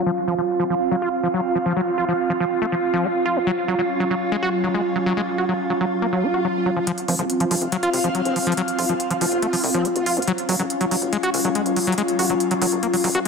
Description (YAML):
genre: psychedelic trance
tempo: 141 BPM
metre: 4/4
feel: straight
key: unclear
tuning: A4 = 440 Hz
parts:
  - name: evolving wavetable pad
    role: sustained chords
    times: 0.0-13.3 s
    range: F4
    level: -24 LUFS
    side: right 1 dB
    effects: chorus, built-in reverb
  - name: overdriven acid bass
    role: riff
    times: 0.0-13.3 s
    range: F3 to Gb4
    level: -24 LUFS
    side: equal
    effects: auto-pan, tape echo
  - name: airy breathy pad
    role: texture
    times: 0.0-13.3 s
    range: Gb3 to F5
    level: -26 LUFS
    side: equal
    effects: chorus, phaser
  - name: swell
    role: sound effects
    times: 6.2-6.9 s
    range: none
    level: -31 LUFS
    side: left 3 dB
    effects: none
  - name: electronic hi-hat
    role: drums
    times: 6.9-13.3 s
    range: none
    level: -26 LUFS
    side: equal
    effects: overdrive, low-pass filter on hats, studio reverb
  - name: plucky analog bass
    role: bass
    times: 7.1-13.2 s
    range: F1 to Db2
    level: -30 LUFS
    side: equal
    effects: high-pass filter
  - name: vowel-sweep wobble bass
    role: second line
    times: 8.3-10.3 s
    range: C4 to F4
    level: -31 LUFS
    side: equal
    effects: ensemble chorus, high-pass filter, digital delay
room: moderate digital room reverb, RT60 1.2 s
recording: dense, heavily limited modern master, low-pass filter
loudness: -19 LUFS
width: side -5 dB against mid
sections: 0.0-6.9 A section; 6.9-13.3 B section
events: filter sweep 0.0-6.9; swell 6.2-6.9; build-up 6.9-13.3; filter sweep on ambient pad 6.9-13.3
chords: 0.1 F5; 3.5 Gb5; 6.9 F5; 10.3 Gb5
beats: | 0.06 0.49 0.91 1.34 | 1.76 2.19 2.62 3.04 | 3.47 3.89 4.32 4.74 | 5.17 5.59 6.02 6.45 | 6.87 7.30 7.72 8.15 | 8.57 9.00 9.42 9.85 | 10.28 10.70 11.13 11.55 | 11.98 12.40 12.83 13.25